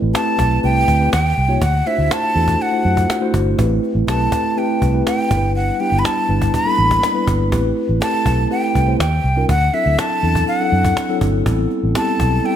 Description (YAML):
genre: polished 1980s jazz-funk pop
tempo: 122 BPM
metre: 4/4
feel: straight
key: A dorian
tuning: A4 = 440 Hz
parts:
  - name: mellow tine electric piano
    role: accompaniment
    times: 0.0-12.6 s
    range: F#3 to D5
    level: -20 LUFS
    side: equal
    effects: medium stereo tremolo, wide subtle chorus
  - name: vintage muted fingered electric bass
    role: bass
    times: 0.0-12.4 s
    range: G1 to F#2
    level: -18 LUFS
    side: equal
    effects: none
  - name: breathy jazz flute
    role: melody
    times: 0.1-12.6 s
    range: E5 to B5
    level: -19 LUFS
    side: equal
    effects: none
  - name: cajon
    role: drums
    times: 0.1-12.5 s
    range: none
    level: -24 LUFS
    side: equal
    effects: none
room: moderate plate reverb, RT60 1.6 s, small room ambience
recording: bright 1980s-style digital production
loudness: -14 LUFS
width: side -10 dB against mid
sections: 0.0-12.6 A section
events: none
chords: 0.0 Am9; 1.1 D#9; 1.6 D9; 3.6 Am9; 5.3 G6; 7.5 Am9; 9.0 D#9; 9.5 D9; 11.5 Am9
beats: 0.14 0.63 1.12 | 1.62 2.11 2.60 3.09 | 3.58 4.08 4.57 5.06 | 5.55 6.04 6.54 7.03 | 7.52 8.01 8.51 9.00 | 9.49 9.98 10.47 10.97 | 11.46 11.95 12.44